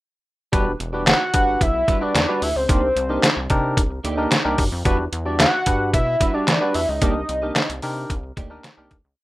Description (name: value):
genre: early-eighties boogie funk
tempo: 111 BPM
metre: 4/4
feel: straight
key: E minor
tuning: A4 = 439 Hz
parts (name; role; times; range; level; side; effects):
- barky tine electric piano; accompaniment; 0.5-9.0 s; D4 to D5; -25 LUFS; left 1 dB; overdrive
- clean electric guitar; riff; 0.5-9.1 s; G3 to Eb5; -29 LUFS; right 4 dB; analog chorus
- rubbery square bass; bass; 0.5-9.2 s; E1 to E3; -27 LUFS; equal; none
- detuned 8-bit digital drum machine; drums; 0.5-9.0 s; handclaps, hi-hat, kick drum, snare drum; -19 LUFS; equal; none
- fat analog lead; melody; 1.1-8.0 s; C5 to F#5; -22 LUFS; equal; plate reverb
room: light reverb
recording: rough home demo mix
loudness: -18 LUFS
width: side -18 dB against mid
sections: 0.5-9.2 verse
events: fade-out 7.0-9.2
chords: 0.5 Em9; 2.7 Cm9; 4.9 Em9; 7.0 Cm9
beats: | 0.53 1.07 1.61 2.15 | 2.69 3.23 3.77 4.32 | 4.86 5.40 5.94 6.48 | 7.02 7.56 8.10 8.64